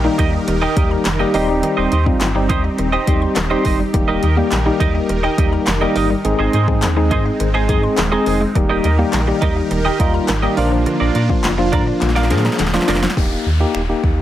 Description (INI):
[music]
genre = dance-pop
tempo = 104 BPM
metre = 4/4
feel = straight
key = Eb major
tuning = A4 = 441 Hz
[part]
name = tine electric piano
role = accompaniment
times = 0.0-14.2 s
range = F3 to Ab4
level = -20 LUFS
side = left 2 dB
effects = medium stereo tremolo, sidechain pumping
[part]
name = supersaw pad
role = sustained chords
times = 0.0-13.1 s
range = Eb3 to Bb4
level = -24 LUFS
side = right 1 dB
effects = phaser, sidechain pumping
[part]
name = mallet-like synth pluck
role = arpeggios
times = 0.0-13.1 s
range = D3 to Eb6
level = -26 LUFS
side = left 3 dB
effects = chorus, sidechain pumping, digital delay
[part]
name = twelve-string electric guitar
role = riff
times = 0.0-13.1 s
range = D4 to Eb5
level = -22 LUFS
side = right 6 dB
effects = lush chorus
[part]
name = sub bass with octave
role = bass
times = 0.0-14.2 s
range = Eb1 to Bb2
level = -20 LUFS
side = equal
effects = sidechain pumping
[part]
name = deep house drum kit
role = drums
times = 0.2-14.2 s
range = finger snaps, handclaps, hi-hat, kick drum, snare drum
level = -20 LUFS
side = equal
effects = none
[part]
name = group handclap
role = percussion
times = 1.1-12.7 s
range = none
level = -30 LUFS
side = left 7 dB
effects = none
[part]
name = downlifter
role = sound effects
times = 13.2-14.2 s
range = none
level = -28 LUFS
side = left 2 dB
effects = none
[sound]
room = light reverb, digital ambience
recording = none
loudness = -14 LUFS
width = side -12 dB against mid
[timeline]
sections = 0.0-13.2 A section; 13.2-14.2 B section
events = drum fill 12.0-13.2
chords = 0.0 Eb; 1.3 Cm/Eb; 3.9 Eb; 6.2 Ab; 8.6 Eb; 10.6 Bb; 13.2 Eb